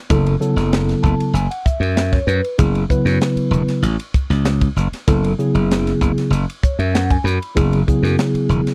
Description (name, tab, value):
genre	electric jazz fusion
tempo	96 BPM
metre	4/4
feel	straight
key	F# minor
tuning	A4 = 440 Hz
part	mellow tine electric piano	accompaniment	0.1-8.7 s	C#3 to B5	-21 LUFS	equal	phaser
part	glassy slap bass	bass	0.1-8.7 s	E1 to F#2	-20 LUFS	equal	transformer saturation
part	crisp fusion drum kit	drums	0.1-8.7 s	hi-hat, kick drum, ride cymbal, snare drum	-22 LUFS	equal	none
room	little or no reverb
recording	dry, close 1970s-style studio recording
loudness	-17 LUFS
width	mono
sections	0.0-8.7 A section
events	tine electric piano fill 0.7-2.6, 6.3-7.6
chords	0.0 F#m9